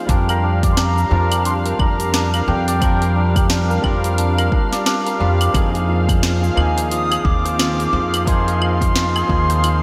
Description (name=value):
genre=organic downtempo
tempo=88 BPM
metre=4/4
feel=swing 59% on 16ths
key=unclear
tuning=A4 = 441 Hz
part: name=barky tine electric piano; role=accompaniment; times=0.0-9.8 s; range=F3 to Bb4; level=-27 LUFS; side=equal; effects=sidechain pumping, delay
part: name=dark chamber string section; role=sustained chords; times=0.0-9.8 s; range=F3 to F5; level=-29 LUFS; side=equal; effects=sidechain pumping
part: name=santur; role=arpeggios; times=0.0-9.8 s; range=D4 to D5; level=-27 LUFS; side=equal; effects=delay
part: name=bright reedy bansuri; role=melody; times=0.1-9.8 s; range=G5 to Eb6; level=-26 LUFS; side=equal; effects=digital delay
part: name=upright bass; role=bass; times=0.1-9.8 s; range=Eb2 to F2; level=-21 LUFS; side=equal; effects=none
part: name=afro-pop drum kit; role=drums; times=0.1-9.8 s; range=claves, hi-hat, shaker, snare drum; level=-26 LUFS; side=equal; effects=studio reverb, gated reverb
part: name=electronic kick drum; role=drums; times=0.1-9.5 s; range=none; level=-21 LUFS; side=equal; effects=overdrive, studio reverb
room=moderate lush hall reverb, RT60 2.9 s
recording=bright 1980s-style digital production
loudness=-17 LUFS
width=mono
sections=0.0-9.8 A section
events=none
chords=0.1 Gm/F; 5.5 Fm